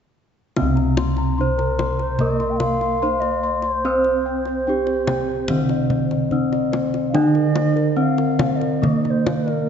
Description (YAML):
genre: Javanese gamelan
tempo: 73 BPM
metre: 4/4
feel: straight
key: C slendro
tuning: A4 = 440 Hz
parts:
  - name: gamelan-type bronze metallophone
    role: melody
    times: 0.6-9.7 s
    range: Bb3-25c to C5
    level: -22 LUFS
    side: left 1 dB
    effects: none
  - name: gamelan-type bronze metallophone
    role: accompaniment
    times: 0.6-9.7 s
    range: C3 to C4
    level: -25 LUFS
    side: right 4 dB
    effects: none
  - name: gamelan-type bossed gongs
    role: bass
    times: 0.6-9.7 s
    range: C2 to C5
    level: -24 LUFS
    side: left 1 dB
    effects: none
  - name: kendang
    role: percussion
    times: 0.6-9.6 s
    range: none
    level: -26 LUFS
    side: left 2 dB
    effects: none
  - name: gamelan-type bossed gongs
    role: arpeggios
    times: 0.8-9.7 s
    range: Bb4-25c to C6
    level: -28 LUFS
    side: left 4 dB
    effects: none
  - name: mellow bansuri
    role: second line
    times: 1.6-9.7 s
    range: Bb4-24c to G5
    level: -27 LUFS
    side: right 4 dB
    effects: none
room: moderate concert hall reverb, RT60 2.1 s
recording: nothing above 7.8 kHz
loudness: -18 LUFS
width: side -8 dB against mid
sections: 0.6-9.7 A section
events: none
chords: none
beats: | 0.56 1.38 2.20 3.02 | 3.85 4.67 5.49 6.31 | 7.13 7.96 8.81 9.69